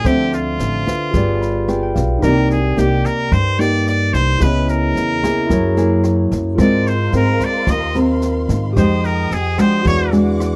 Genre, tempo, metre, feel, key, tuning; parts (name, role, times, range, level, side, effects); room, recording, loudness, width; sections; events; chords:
bossa nova; 110 BPM; 4/4; straight; A4 = 437 Hz
trumpet with straight mute; melody; 0.0-10.1 s; F4 to Eb5; -24 LUFS; equal
barky tine electric piano; accompaniment; 0.0-10.6 s; Cb4 to B5; -25 LUFS; equal
nylon-string guitar; accompaniment; 0.0-10.6 s; G2 to Bb4; -21 LUFS; equal
upright bass; bass; 0.0-10.6 s; G1 to Ab2; -21 LUFS; equal
jazz brush drum kit; drums; 0.0-10.5 s; kick drum, rim click, snare drum; -26 LUFS; equal
warm symphonic violin section; sustained chords; 6.6-10.6 s; Bb4 to Eb6; -32 LUFS; equal
light reverb; dry, close 1970s-style studio recording; -16 LUFS; mono
0.0-10.6 A section
tine electric piano fill 1.1-2.2
0.0 Dm9; 1.1 G7b9; 2.2 Cm7; 4.4 Dbm7; 5.5 Gb9; 6.6 Ab69; 8.8 Fm9; 9.8 E9